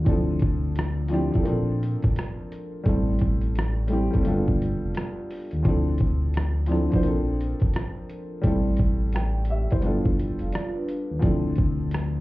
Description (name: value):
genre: lo-fi hip hop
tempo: 86 BPM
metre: 4/4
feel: swing 65% on 16ths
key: D minor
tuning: A4 = 439 Hz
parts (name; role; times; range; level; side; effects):
- dark upright piano; accompaniment; 0.0-12.2 s; E3 to G5; -27 LUFS; equal; plate reverb
- smooth synth bass; bass; 0.0-12.2 s; F1 to Eb2; -25 LUFS; equal; none
- boom bap sampler-style drum kit; drums; 0.1-12.1 s; hi-hat, kick drum, rim click; -24 LUFS; equal; overdrive, vintage 12-bit sampler grit
- vibraphone with soft mallets; second line; 10.4-11.2 s; D4 to F5; -34 LUFS; right 1 dB; tape echo, plate reverb
room: light reverb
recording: heard muffled through a wall, club reverb, EQ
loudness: -22 LUFS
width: side -18 dB against mid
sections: 0.0-12.2 A section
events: none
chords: 0.1 Dm7; 1.5 Bbmaj9; 2.9 Am7; 4.3 G9; 5.6 Dm7; 7.0 Bbmaj9; 8.4 Am7; 9.8 G9; 11.2 Dm7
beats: | 0.07 0.77 1.46 2.16 | 2.86 3.56 4.25 4.95 | 5.65 6.35 7.04 7.74 | 8.44 9.14 9.84 10.53 | 11.23 11.93